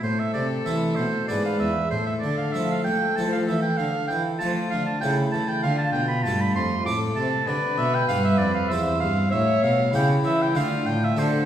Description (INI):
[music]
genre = classical, baroque-style sonata movement with continuo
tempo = 97 BPM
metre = 3/4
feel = rubato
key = A minor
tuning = A4 = 440 Hz
[part]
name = dark violin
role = melody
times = 0.0-11.5 s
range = E4 to C#5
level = -29 LUFS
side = left 4 dB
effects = none
[part]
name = bright oboe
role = second line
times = 0.0-11.5 s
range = C5 to D6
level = -26 LUFS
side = right 4 dB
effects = none
[part]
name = harpsichord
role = accompaniment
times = 0.0-11.5 s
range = E2 to A4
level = -28 LUFS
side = left 1 dB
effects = none
[part]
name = dark cello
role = bass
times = 0.0-11.5 s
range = E2 to A3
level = -26 LUFS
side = equal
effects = none
[sound]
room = wet recital hall reverb, RT60 1.7 s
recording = heard from further back in the room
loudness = -21 LUFS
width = side -10 dB against mid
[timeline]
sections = 0.0-11.5 A section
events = none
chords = 0.0 Am; 1.3 E7/G#; 1.9 A5; 3.8 Dm; 5.0 A7/C#; 5.6 Dm; 7.5 G7; 8.7 C/E; 9.3 A7; 10.6 Dm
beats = | 0.04 0.67 1.30 | 1.93 2.55 3.18 | 3.80 4.42 5.03 | 5.64 6.26 6.87 | 7.49 8.09 8.71 | 9.32 9.94 10.56 | 11.18